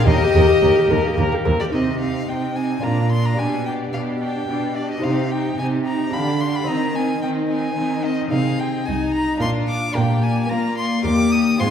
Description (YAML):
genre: classical, baroque-style concerto movement with solo episodes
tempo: 109 BPM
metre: 3/4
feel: straight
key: C minor, Eb major from 8.3 s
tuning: A4 = 440 Hz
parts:
  - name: rich chamber violin section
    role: melody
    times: 0.0-11.7 s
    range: C5 to F5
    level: -35 LUFS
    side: left 5 dB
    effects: none
  - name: rich violin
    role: melody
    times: 0.0-11.7 s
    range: D5 to Eb6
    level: -26 LUFS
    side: left 1 dB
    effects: none
  - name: rich chamber violin section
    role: second line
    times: 0.0-11.7 s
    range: Eb4 to Ab4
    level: -26 LUFS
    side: left 4 dB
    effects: none
  - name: lute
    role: accompaniment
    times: 0.0-11.7 s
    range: Eb2 to F5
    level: -27 LUFS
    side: left 1 dB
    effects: none
  - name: rich chamber viola section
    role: accompaniment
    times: 0.0-11.7 s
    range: Bb3 to Bb4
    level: -23 LUFS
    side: left 1 dB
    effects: none
  - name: rich chamber cello section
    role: bass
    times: 0.1-11.7 s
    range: C2 to Bb3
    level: -22 LUFS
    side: right 2 dB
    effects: none
  - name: rich chamber double bass section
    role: bass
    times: 0.1-1.5 s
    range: Eb2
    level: -24 LUFS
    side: right 2 dB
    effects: none
room: wet recital hall reverb, RT60 1.3 s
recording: heard from further back in the room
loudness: -17 LUFS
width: side -8 dB against mid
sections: 0.0-1.7 A section; 1.7-11.7 B section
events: none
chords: 0.1 Eb; 1.7 Cm; 2.8 Bb; 3.4 G/B; 5.0 Cm; 6.1 G7/D; 6.7 Cm/Eb; 8.3 Ab/C; 9.4 Bb; 11.1 Eb